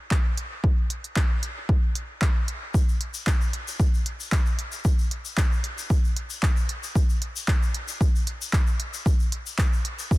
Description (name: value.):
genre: techno.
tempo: 114 BPM.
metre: 4/4.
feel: swing 53% on 16ths.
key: none.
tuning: none.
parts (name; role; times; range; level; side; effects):
deep house drum kit; drums; 0.1-10.0 s; handclaps, hi-hat; -32 LUFS; equal; dub echo.
electronic kick drum; drums; 0.1-10.2 s; none; -22 LUFS; equal; none.
egg shaker; percussion; 2.7-10.2 s; none; -36 LUFS; left 6 dB; none.
room: little or no reverb.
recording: dense, heavily limited modern master.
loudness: -22 LUFS.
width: side -20 dB against mid.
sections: 0.0-10.2 A section.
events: none.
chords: none.